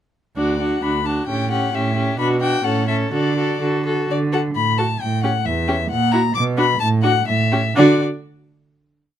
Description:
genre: quick classical-period movement for string quartet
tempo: 120-135 BPM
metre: 2/4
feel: rubato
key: D major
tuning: A4 = 440 Hz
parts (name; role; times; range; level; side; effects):
- rich violin; melody; 0.4-8.0 s; D5 to D6; -22 LUFS; left 8 dB; none
- rich violin; second line; 0.4-8.0 s; F#4 to A4; -23 LUFS; left 2 dB; none
- warm viola; accompaniment; 0.4-8.0 s; C#4 to F#4; -23 LUFS; right 2 dB; none
- dark cello; bass; 0.4-8.0 s; D2 to D3; -20 LUFS; right 3 dB; none
room: light reverb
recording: close, detailed microphones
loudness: -16 LUFS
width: side -10 dB against mid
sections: 0.4-4.1 A section; 4.1-7.8 A section; 7.8-8.7 final chord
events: none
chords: 0.4 D; 1.3 A7; 2.2 Bm; 2.6 A; 3.1 D; 5.0 A7; 5.9 F#7/A#; 6.4 Bm; 6.8 D/A; 7.3 A; 7.8 D

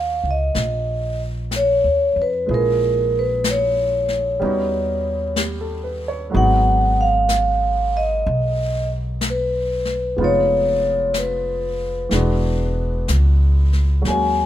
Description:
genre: jazz ballad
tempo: 62 BPM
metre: 4/4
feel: swing 67% on 8ths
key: Eb minor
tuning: A4 = 445 Hz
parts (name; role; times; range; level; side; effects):
- vibraphone with soft mallets; melody; 0.0-14.5 s; Bb4 to Ab5; -19 LUFS; left 1 dB; none
- warm upright piano; accompaniment; 0.0-14.5 s; Bb2 to Db5; -26 LUFS; right 3 dB; none
- upright bass; bass; 0.0-14.5 s; E1 to F2; -21 LUFS; equal; none
- jazz brush drum kit; drums; 0.5-14.5 s; brushed snare drum, hi-hat, snare drum; -28 LUFS; left 4 dB; none
room: little or no reverb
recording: minimal, uncompressed stereo recording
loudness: -17 LUFS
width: side -12 dB against mid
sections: 0.0-14.5 A section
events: none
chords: 0.0 Ebm9; 2.5 Bbm7b5; 4.4 Eb7alt; 6.3 Abm7; 10.2 Fm7b5; 12.1 E9

